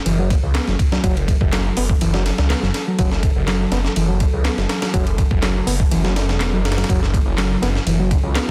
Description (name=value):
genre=breakbeat, breaks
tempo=123 BPM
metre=4/4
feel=straight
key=F# minor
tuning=A4 = 440 Hz
part: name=deep dark ambient pad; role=sustained chords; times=1.3-8.5 s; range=F#3 to A4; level=-32 LUFS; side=equal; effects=chorus, built-in reverb, vintage 12-bit sampler grit, sidechain pumping
part: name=bright reed electric piano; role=riff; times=0.1-8.5 s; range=E3 to B3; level=-26 LUFS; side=equal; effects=overdrive, tube saturation, low-pass filter, delay
part: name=phased detuned saw bass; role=bass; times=0.1-8.5 s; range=E1 to C#2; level=-23 LUFS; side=equal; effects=phaser, tube saturation
part: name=breakbeat sampler-style drum kit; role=drums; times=0.1-8.5 s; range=hi-hat, kick drum, ride cymbal, snare drum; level=-22 LUFS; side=equal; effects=studio reverb
part: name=electronic handclaps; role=drums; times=0.6-8.5 s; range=none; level=-34 LUFS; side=equal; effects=studio reverb
room=little or no reverb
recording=dense, heavily limited modern master, vinyl crackle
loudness=-18 LUFS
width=mono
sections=0.0-8.5 A section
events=none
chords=0.0 F#m7